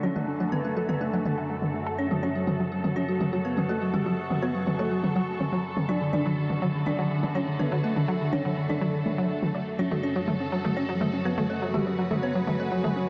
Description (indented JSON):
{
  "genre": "melodic techno",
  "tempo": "123 BPM",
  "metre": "4/4",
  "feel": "straight",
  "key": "F# minor",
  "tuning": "A4 = 440 Hz",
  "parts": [
    { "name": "expressive synth lead", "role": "melody", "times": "0.0-13.0 s", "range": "D3 to D4", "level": "-32 LUFS", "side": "equal", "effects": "analog chorus, dub echo" },
    { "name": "dark detuned synth bell", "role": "second line", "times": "0.0-13.0 s", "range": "D4 to D5", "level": "-37 LUFS", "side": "equal", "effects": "chorus, phaser, vintage 12-bit sampler grit, delay" },
    { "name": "rich studio string section", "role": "sustained chords", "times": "0.0-13.1 s", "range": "C#3 to B4", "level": "-37 LUFS", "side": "equal", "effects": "vintage 12-bit sampler grit, low-pass filter" },
    { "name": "analog pluck", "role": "arpeggios", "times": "0.0-13.0 s", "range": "F#3 to F#5", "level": "-34 LUFS", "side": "equal", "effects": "chorus, delay" },
    { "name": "overtone-sweeping drone", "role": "drone", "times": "0.0-13.1 s", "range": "F#2", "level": "-42 LUFS", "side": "equal", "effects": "chorus, built-in reverb" },
    { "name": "ethereal airy pad", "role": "texture", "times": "0.0-13.1 s", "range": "D4 to C#6", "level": "-39 LUFS", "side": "equal", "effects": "ensemble chorus, built-in reverb, phaser" },
    { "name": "electronic toms", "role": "drums", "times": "0.2-12.9 s", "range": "none", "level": "-35 LUFS", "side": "equal", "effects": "low-pass filter on toms, low-pass filter on room" }
  ],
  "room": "moderate concert hall reverb, RT60 2.4 s",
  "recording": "none",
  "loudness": "-27 LUFS",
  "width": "mono",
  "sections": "0.0-13.1 A section",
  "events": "filter sweep on synth arpeggio sound 0.0-13.1; filter sweep on string section 0.0-13.1",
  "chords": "0.0 D; 2.0 F#m; 5.9 D; 9.8 F#m",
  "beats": "| 0.03 0.52 1.01 1.50 | 1.99 2.47 2.96 3.45 | 3.94 4.42 4.91 5.40 | 5.89 6.38 6.86 7.35 | 7.84 8.33 8.81 9.30 | 9.79 10.28 10.77 11.25 | 11.74 12.23 12.72"
}